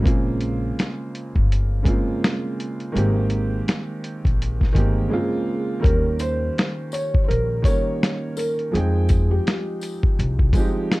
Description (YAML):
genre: lo-fi hip hop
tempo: 83 BPM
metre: 4/4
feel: swing 60% on 16ths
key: Bb dorian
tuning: A4 = 437 Hz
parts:
  - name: warm upright piano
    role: accompaniment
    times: 0.0-11.0 s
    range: Db3 to G5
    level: -25 LUFS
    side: right 2 dB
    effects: cassette tape, low-pass filter
  - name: upright bass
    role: bass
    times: 0.1-10.5 s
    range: G1 to F2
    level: -22 LUFS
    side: equal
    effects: none
  - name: lo-fi sampler-style drum kit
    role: drums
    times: 0.1-11.0 s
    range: hi-hat, kick drum, snare drum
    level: -20 LUFS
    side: equal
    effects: none
  - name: felt-muted upright piano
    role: melody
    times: 5.1-11.0 s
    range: G4 to Db5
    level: -27 LUFS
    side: equal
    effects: low-pass filter, plate reverb
  - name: tambourine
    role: percussion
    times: 6.2-10.7 s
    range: none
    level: -43 LUFS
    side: left 6 dB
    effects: none
room: light reverb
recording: dark, warm production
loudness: -19 LUFS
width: side -20 dB against mid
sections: 0.0-5.8 A section; 5.8-11.0 B section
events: break 5.1-5.8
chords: 0.1 Bbm9; 2.9 Abmaj9; 5.1 Bbm9; 5.8 Eb7; 8.7 Fm9